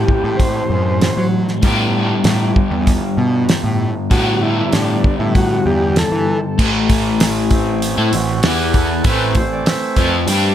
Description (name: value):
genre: psychedelic rock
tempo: 97 BPM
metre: 4/4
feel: straight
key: A dorian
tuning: A4 = 440 Hz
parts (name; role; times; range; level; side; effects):
- combo organ; melody; 0.0-6.4 s; D4 to C5; -21 LUFS; equal; digital delay
- crunchy overdriven guitar; riff; 0.0-10.5 s; G2 to G4; -18 LUFS; left 2 dB; harmonic tremolo
- fuzz picked electric bass; bass; 0.0-10.5 s; A1 to F#3; -19 LUFS; equal; overdrive
- damped 70s drum kit; drums; 0.1-10.4 s; crash cymbal, hi-hat, kick drum, snare drum; -17 LUFS; equal; none
- hand-pumped harmonium; sustained chords; 7.5-10.5 s; E3 to E5; -20 LUFS; right 4 dB; none
room: light reverb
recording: none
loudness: -13 LUFS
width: side -10 dB against mid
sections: 0.0-6.6 A section; 6.6-10.5 B section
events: harmonium solo 6.6-10.5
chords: 0.0 Am; 1.6 Gadd9; 6.6 Am; 8.4 E5; 9.0 Am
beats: 0.40 1.02 | 1.64 2.26 2.88 3.50 | 4.11 4.73 5.35 5.96 | 6.58 7.20 7.81 8.43 | 9.04 9.66 10.27